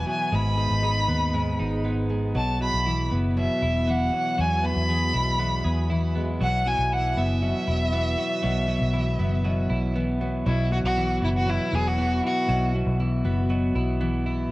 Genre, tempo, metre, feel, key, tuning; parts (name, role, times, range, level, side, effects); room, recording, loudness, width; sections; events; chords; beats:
acoustic pop; 118 BPM; 4/4; straight; A4 = 441 Hz
clear violin; melody; 0.0-12.7 s; E4 to B5; -27 LUFS; equal; cassette tape, analog delay
picked steel-string acoustic guitar; accompaniment; 0.0-14.5 s; E2 to F#4; -29 LUFS; left 2 dB; cassette tape
ethereal airy pad; sustained chords; 0.0-10.4 s; G#3 to E5; -39 LUFS; equal
twelve-string electric guitar; arpeggios; 0.0-14.5 s; F#3 to G#4; -30 LUFS; right 2 dB; cassette tape, analog delay
vintage muted fingered electric bass; bass; 0.0-14.5 s; E1 to E2; -26 LUFS; equal
light reverb, small room ambience; home recording on cassette; -22 LUFS; side -19 dB against mid
0.0-10.5 A section; 10.5-14.5 B section
0.3 G#m; 2.4 Bsus4; 4.4 Eadd9; 6.4 Bsus4
| 0.33 0.83 1.34 1.85 | 2.35 2.86 3.37 3.87 | 4.38 4.89 5.39 5.90 | 6.41 6.92 7.42 7.93 | 8.44 8.94 9.45 9.95 | 10.46 10.97 11.47 11.98 | 12.49 12.99 13.50 14.01 | 14.51